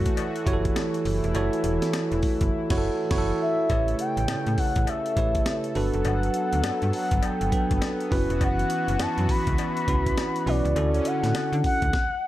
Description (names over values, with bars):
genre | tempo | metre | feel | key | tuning
R&B, new jack swing | 102 BPM | 4/4 | swing 62% on 16ths | unclear | A4 = 441 Hz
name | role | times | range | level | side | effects
bell-like tine electric piano | accompaniment | 0.0-12.0 s | F#3 to C#5 | -28 LUFS | right 3 dB | none
brassy analog pad | sustained chords | 0.0-11.9 s | C#3 to A4 | -31 LUFS | left 1 dB | chorus
slap-like FM bass | bass | 0.0-11.9 s | E1 to D3 | -26 LUFS | equal | none
breakbeat sampler-style drum kit | drums | 0.1-12.1 s | crash cymbal, hi-hat, kick drum, snare drum | -28 LUFS | equal | none
cowbell | percussion | 0.2-11.5 s | none | -39 LUFS | left 9 dB | none
expressive portamento lead | melody | 3.4-12.3 s | D5 to B5 | -28 LUFS | left 1 dB | chorus
room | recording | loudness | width
light reverb | none | -22 LUFS | side -14 dB against mid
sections
0.0-3.7 A section; 3.7-12.3 B section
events
band accent 2.5-3.7; silent gap 3.1-3.7; stop 11.9-12.3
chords
0.0 F#m7; 3.7 A7; 5.8 Gmaj7; 8.1 F#7sus4; 10.8 Dmaj7